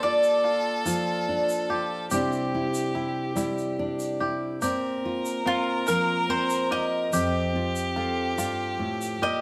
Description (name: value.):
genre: acoustic folk duo or small band.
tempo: 48 BPM (dotted quarters).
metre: 6/8.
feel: straight.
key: unclear.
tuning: A4 = 441 Hz.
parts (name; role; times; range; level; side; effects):
mandolin; melody; 0.0-1.7, 5.5-9.4 s; F4 to Eb5; -28 LUFS; equal; none.
clear fiddle; second line; 0.0-9.4 s; G4 to Bb4; -33 LUFS; equal; none.
fingerpicked steel-string acoustic guitar; accompaniment; 0.0-9.4 s; F2 to A4; -30 LUFS; equal; none.
bluegrass banjo; arpeggios; 0.0-9.4 s; E4 to G4; -37 LUFS; equal; none.
egg shaker; percussion; 0.2-9.2 s; none; -41 LUFS; equal; none.
room: moderate stone room reverb, RT60 1.4 s.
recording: band playing live in one room.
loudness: -26 LUFS.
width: mono.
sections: 0.0-9.4 A section.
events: mandolin solo 0.0-9.4.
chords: 0.0 Bb; 2.1 Cadd9; 4.6 Bbsus2; 7.1 F.